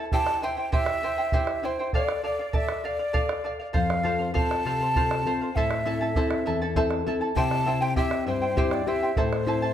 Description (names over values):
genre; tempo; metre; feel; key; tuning
andean folk, Andean ensemble; 66 BPM (dotted quarters); 6/8; straight; unclear; A4 = 440 Hz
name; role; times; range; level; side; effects
charango; accompaniment; 0.0-9.7 s; E4 to A5; -29 LUFS; right 2 dB; none
breathy mellow quena; melody; 0.1-9.7 s; C5 to A5; -28 LUFS; equal; none
bombo; percussion; 0.1-9.6 s; none; -29 LUFS; right 2 dB; none
nylon-string guitar; accompaniment; 3.7-9.7 s; E2 to A4; -28 LUFS; left 5 dB; none
room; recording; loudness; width
moderate recital hall reverb, RT60 1.5 s; none; -23 LUFS; side -10 dB against mid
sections
0.0-9.7 A section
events
none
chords
0.1 C; 1.9 Dm; 3.7 F; 5.6 Am; 7.4 C; 9.2 Am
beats
| 0.12 1.02 | 1.93 2.83 | 3.74 4.65 | 5.55 6.46 | 7.36 8.27 | 9.17